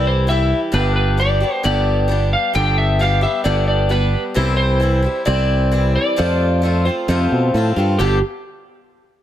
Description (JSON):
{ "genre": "folk rock and heartland rock", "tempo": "132 BPM", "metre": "4/4", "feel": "straight", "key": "G mixolydian", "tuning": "A4 = 440 Hz", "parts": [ { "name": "electric slide guitar", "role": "melody", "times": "0.0-8.2 s", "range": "G4 to G5", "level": "-20 LUFS", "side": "equal", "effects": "none" }, { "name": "picked swing-style acoustic guitar", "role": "accompaniment", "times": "0.0-8.2 s", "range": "F2 to G4", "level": "-21 LUFS", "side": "left 2 dB", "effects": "none" }, { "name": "fingered electric bass", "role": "bass", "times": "0.0-8.2 s", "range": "G1 to B2", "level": "-17 LUFS", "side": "equal", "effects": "none" } ], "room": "light reverb", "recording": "none", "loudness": "-15 LUFS", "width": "side -11 dB against mid", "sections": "0.0-8.0 A section; 8.0-9.2 B section", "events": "none", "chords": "0.0 C; 0.7 G; 4.4 C; 6.2 F; 8.0 G", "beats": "0.28 | 0.74 1.19 1.64 2.10 | 2.55 3.00 3.46 3.91 | 4.36 4.82 5.27 5.72 | 6.18 6.63 7.09 7.54 | 8.00" }